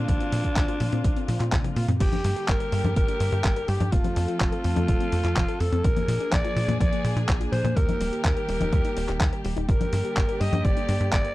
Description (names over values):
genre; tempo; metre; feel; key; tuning
italo disco; 125 BPM; 4/4; straight; G minor; A4 = 440 Hz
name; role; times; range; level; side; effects
breathy alto saxophone; melody; 0.0-11.3 s; D4 to Eb5; -30 LUFS; equal; tape echo
warm studio string section; sustained chords; 0.0-11.3 s; D3 to A4; -33 LUFS; equal; none
soft round pluck; arpeggios; 0.0-11.3 s; F3 to Bb4; -34 LUFS; left 4 dB; chorus, tape echo
tight sequencer bass; bass; 0.0-11.3 s; Eb1 to Bb2; -26 LUFS; equal; none
dusty soul sampler-style drum kit; drums; 0.1-11.3 s; congas, crash cymbal, handclaps, hi-hat, toms; -31 LUFS; left 1 dB; overdrive
electronic kick drum; drums; 0.1-11.2 s; none; -25 LUFS; equal; none
room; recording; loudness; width
little or no reverb; dry, close 1970s-style studio recording; -22 LUFS; side -17 dB against mid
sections
0.0-2.0 A section; 2.0-11.3 B section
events
drum fill 1.5-2.0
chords
0.0 Bbadd9; 2.0 Gm; 3.9 F; 5.8 Bb7; 7.8 Eb; 9.7 Gm